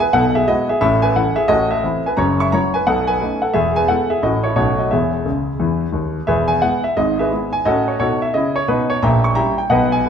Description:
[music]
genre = jazz, stride piano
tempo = 176 BPM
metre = 4/4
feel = swing 64% on 8ths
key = E major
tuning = A4 = 441 Hz
[part]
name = clear concert grand piano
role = solo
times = 0.0-10.1 s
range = E1 to C#6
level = -15 LUFS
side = equal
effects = none
[sound]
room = moderate scoring stage reverb, RT60 1.7 s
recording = minimal, uncompressed stereo recording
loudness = -15 LUFS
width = side -7 dB against mid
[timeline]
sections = 0.0-6.3 A section; 6.3-10.1 A section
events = grand piano fill 5.2-6.3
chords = 0.0 E; 0.8 A; 1.5 Am; 2.2 F#5; 2.9 B9; 3.5 E; 4.2 A; 4.6 B9; 4.9 E; 7.0 E/G#; 7.6 F#m/A; 9.0 A#dim7

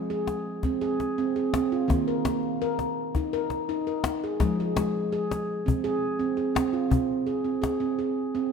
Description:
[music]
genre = world meditative, meditative tuned percussion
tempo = 167 BPM (eighths)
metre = 7/8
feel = straight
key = F minor pentatonic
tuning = A4 = 442 Hz
[part]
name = handpan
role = arpeggios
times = 0.0-8.5 s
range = Eb3 to Bb4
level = -26 LUFS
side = right 2 dB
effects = none
[part]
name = cajon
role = percussion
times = 0.3-8.4 s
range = none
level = -28 LUFS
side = left 3 dB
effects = none
[sound]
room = wet concert hall reverb, RT60 1.9 s, studio reverb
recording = none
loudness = -25 LUFS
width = side -6 dB against mid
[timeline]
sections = 0.0-6.9 A section; 6.9-8.5 B section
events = none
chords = 0.0 Fm; 1.9 Eb5; 4.4 Fm; 6.9 Fm (rootless)

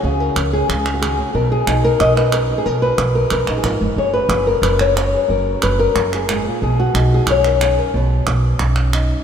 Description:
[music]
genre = flamenco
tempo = 182 BPM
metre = 4/4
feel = straight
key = B major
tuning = A4 = 442 Hz
[part]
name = flamenco guitar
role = melody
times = 0.0-9.2 s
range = F#2 to D#5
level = -17 LUFS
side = left 2 dB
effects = analog delay
[part]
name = upright bass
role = bass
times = 0.0-9.1 s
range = F#1 to C#2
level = -18 LUFS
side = equal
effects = none
[part]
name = palmas hand claps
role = percussion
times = 0.4-9.1 s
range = none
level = -24 LUFS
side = right 4 dB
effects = none
[sound]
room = wet lush hall reverb, RT60 3.3 s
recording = dreamy mix soaked in reverb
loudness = -14 LUFS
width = side -8 dB against mid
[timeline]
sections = 0.0-9.2 A section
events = none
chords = 0.0 C#5; 1.4 B; 4.0 F#add9; 6.6 B

